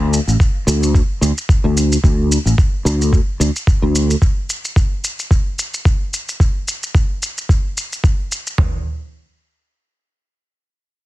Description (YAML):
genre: organic downtempo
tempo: 110 BPM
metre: 4/4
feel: swing 55% on 16ths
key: unclear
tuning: A4 = 440 Hz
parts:
  - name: sustaining fretless electric bass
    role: bass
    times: 0.0-4.1 s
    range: A1 to D2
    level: -14 LUFS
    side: equal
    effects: ensemble chorus, sidechain pumping
  - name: shaker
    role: drums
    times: 0.1-8.6 s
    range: none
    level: -24 LUFS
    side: equal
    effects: soft clipping on snare
  - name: dusty soul sampler-style drum kit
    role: drums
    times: 0.4-8.7 s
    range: kick drum, toms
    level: -14 LUFS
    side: equal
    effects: none
room: little or no reverb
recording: dense, heavily limited modern master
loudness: -14 LUFS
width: side -16 dB against mid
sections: 0.0-8.6 A section; 8.6-11.1 B section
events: none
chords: none